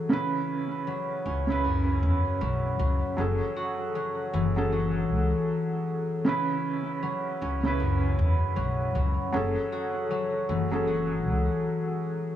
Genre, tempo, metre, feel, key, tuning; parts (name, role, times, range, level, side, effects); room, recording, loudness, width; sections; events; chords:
trip hop; 78 BPM; 4/4; swing 59% on 16ths; F# minor; A4 = 440 Hz
felt-muted upright piano; accompaniment; 0.0-12.4 s; C#3 to B4; -29 LUFS; right 2 dB; tremolo, tape echo
concert harp; arpeggios; 0.0-12.4 s; F#2 to F#4; -30 LUFS; left 3 dB; tape echo
upright bass; bass; 1.3-11.5 s; F#1 to E2; -28 LUFS; equal
light reverb, studio reverb; small room ambience; -25 LUFS; side -11 dB against mid
0.0-12.4 A section
0.1 C#m7; 3.2 F#madd9; 6.3 C#m7; 9.3 F#madd9